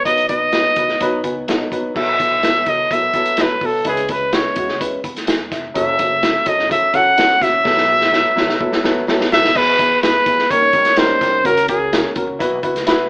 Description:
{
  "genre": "uptempo 1960s-style soul",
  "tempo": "126 BPM",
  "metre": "4/4",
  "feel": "straight",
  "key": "unclear",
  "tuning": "A4 = 440 Hz",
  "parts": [
    { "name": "warm trumpet", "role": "melody", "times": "0.0-12.1 s", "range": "G#4 to F#5", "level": "-14 LUFS", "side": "equal", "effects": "none" },
    { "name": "dark grand piano", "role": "accompaniment", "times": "0.0-13.0 s", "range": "F#3 to B5", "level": "-21 LUFS", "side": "equal", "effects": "none" },
    { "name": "upright bass", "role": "bass", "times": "0.1-13.1 s", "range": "F1 to B2", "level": "-35 LUFS", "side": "equal", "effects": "none" },
    { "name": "vintage drum kit", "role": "drums", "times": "0.1-13.0 s", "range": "crash cymbal, hi-hat, kick drum, snare drum", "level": "-20 LUFS", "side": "equal", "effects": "none" }
  ],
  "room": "moderate studio reverb, RT60 0.6 s",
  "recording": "band playing live in one room, AM radio sound",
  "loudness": "-13 LUFS",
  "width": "side -28 dB against mid",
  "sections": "0.0-2.0 A section; 2.0-9.6 B section; 9.6-13.1 C section",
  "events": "grand piano fill 1.0-2.0; drum fill 7.7-9.6",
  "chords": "0.1 B; 2.0 B7sus4; 3.9 C#m7; 5.8 F#m7; 7.7 B7sus4; 9.6 E; 10.5 D#7; 11.4 F#/C#; 12.4 Bsus4",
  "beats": "| 0.05 0.53 1.01 1.48 | 1.96 2.43 2.91 3.38 | 3.86 4.33 4.81 5.28 | 5.76 6.23 6.71 7.18 | 7.65 8.13 8.60 9.08 | 9.55 10.03 10.50 10.97 | 11.45 11.92 12.40 12.87"
}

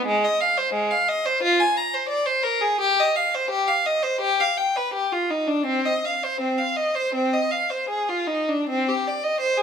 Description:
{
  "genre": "classical, baroque-style suite movement for unaccompanied violin",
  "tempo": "74-90 BPM",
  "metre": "4/4",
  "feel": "rubato",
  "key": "C minor",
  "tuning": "A4 = 440 Hz",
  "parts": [
    { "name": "clear violin", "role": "solo", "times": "0.0-9.6 s", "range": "Ab3 to Bb5", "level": "-20 LUFS", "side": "equal", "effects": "none" }
  ],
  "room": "moderate recital hall reverb, RT60 1.6 s",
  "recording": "close, detailed microphones",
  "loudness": "-20 LUFS",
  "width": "side -7 dB against mid",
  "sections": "0.0-8.7 A section",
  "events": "none",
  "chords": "none",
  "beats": "| 0.06 0.74 1.42 2.09 | 2.80 3.50 4.20 4.93 | 5.66 6.41 7.16 7.90 | 8.69 9.41"
}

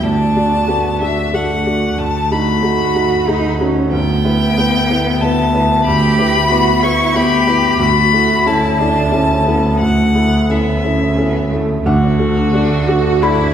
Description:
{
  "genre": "neoclassical piano and strings",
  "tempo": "86-94 BPM",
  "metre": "3/4",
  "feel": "rubato",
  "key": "D major",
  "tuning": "A4 = 440 Hz",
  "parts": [
    { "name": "clear violin", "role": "melody", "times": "0.0-13.5 s", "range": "E4 to C#6", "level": "-17 LUFS", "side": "left 4 dB", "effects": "none" },
    { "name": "rich cello", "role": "second line", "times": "0.0-13.5 s", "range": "A3 to G4", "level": "-21 LUFS", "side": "right 4 dB", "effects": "none" },
    { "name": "felt-muted upright piano", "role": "accompaniment", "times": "0.0-13.5 s", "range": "D2 to B5", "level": "-16 LUFS", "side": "right 1 dB", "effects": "none" },
    { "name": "rich double bass", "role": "bass", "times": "0.0-13.5 s", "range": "D2", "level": "-19 LUFS", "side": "equal", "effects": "none" },
    { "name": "marimba with medium mallets", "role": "arpeggios", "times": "11.9-13.5 s", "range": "D4 to D5", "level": "-22 LUFS", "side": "equal", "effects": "none" }
  ],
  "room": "wet scoring stage reverb, RT60 1.6 s",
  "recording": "recorded in a church or concert hall",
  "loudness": "-12 LUFS",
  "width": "side -9 dB against mid",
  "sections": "0.0-11.9 A section; 11.9-13.5 A section",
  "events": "none",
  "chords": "0.0 D; 2.0 B7/D; 3.9 Em/D; 7.8 A/D; 11.9 D",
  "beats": "| 0.04 0.69 1.33 | 1.98 2.63 3.27 | 3.92 4.56 5.20 | 5.85 6.50 7.15 | 7.80 8.46 9.12 | 9.80 10.50 11.19 | 11.86 12.54 13.22"
}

